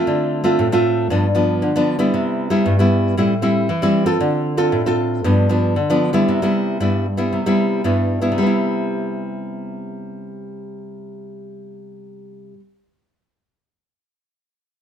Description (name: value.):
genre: samba.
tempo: 116 BPM.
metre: 4/4.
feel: straight.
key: C major.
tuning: A4 = 444 Hz.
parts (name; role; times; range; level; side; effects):
nylon-string guitar; solo; 0.0-12.7 s; G2 to A4; -17 LUFS; equal; none.
room: moderate studio reverb, RT60 0.9 s.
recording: minimal, uncompressed stereo recording.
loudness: -16 LUFS.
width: side -9 dB against mid.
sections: 0.0-6.3 A section; 6.3-8.4 B section; 8.4-12.5 C section.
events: none.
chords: 0.1 Dm7; 1.1 G7; 2.1 Cmaj7; 3.2 Am7; 4.2 Dm7; 5.2 G7; 6.3 Cmaj7.